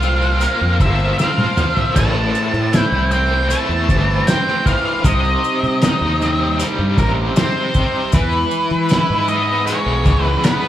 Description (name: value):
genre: psychedelic rock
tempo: 78 BPM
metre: 4/4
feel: straight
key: unclear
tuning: A4 = 441 Hz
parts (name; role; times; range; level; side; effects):
- octave-fuzz lead guitar; melody; 0.0-10.7 s; Bb4 to A5; -20 LUFS; equal; distortion
- bright studio string section; sustained chords; 0.0-10.7 s; E3 to C5; -28 LUFS; right 3 dB; none
- overdriven electric guitar; riff; 0.0-10.7 s; A2 to F4; -20 LUFS; left 1 dB; tremolo
- fuzz fingered electric bass; bass; 0.0-10.4 s; G1 to E3; -20 LUFS; equal; overdrive
- maracas; percussion; 0.0-10.6 s; none; -35 LUFS; left 8 dB; none
- cloth-damped thuddy drum kit; drums; 0.4-10.6 s; crash cymbal, hi-hat, kick drum, snare drum, toms; -18 LUFS; equal; none
room: light reverb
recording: band playing live in one room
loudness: -14 LUFS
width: side -12 dB against mid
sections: 0.0-10.7 A section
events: drum fill 1.2-2.0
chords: 0.0 Bbsus2; 2.0 Am; 5.1 Cm; 8.1 E